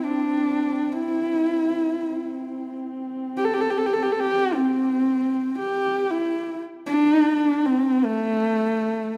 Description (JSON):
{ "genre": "mongolian traditional, Mongolian folk", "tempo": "116 BPM", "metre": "4/4", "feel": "straight", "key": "C gong mode", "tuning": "A4 = 441 Hz", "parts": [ { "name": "dark horsehead fiddle", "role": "melody", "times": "0.0-9.2 s", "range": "A3 to A4", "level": "-23 LUFS", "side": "equal", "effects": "none" }, { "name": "dark horsehead fiddle", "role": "drone", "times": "0.0-6.2 s", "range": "C4", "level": "-34 LUFS", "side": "equal", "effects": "none" } ], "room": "moderate concert hall reverb, RT60 2.2 s", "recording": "none", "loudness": "-23 LUFS", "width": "mono", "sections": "0.0-6.1 A section; 6.1-9.2 B section", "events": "none", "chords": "none", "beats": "0.39 0.91 1.43 | 1.95 2.46 2.98 3.50 | 4.02 4.54 5.06 5.57 | 6.09 6.61 7.12 7.64 | 8.16 8.67" }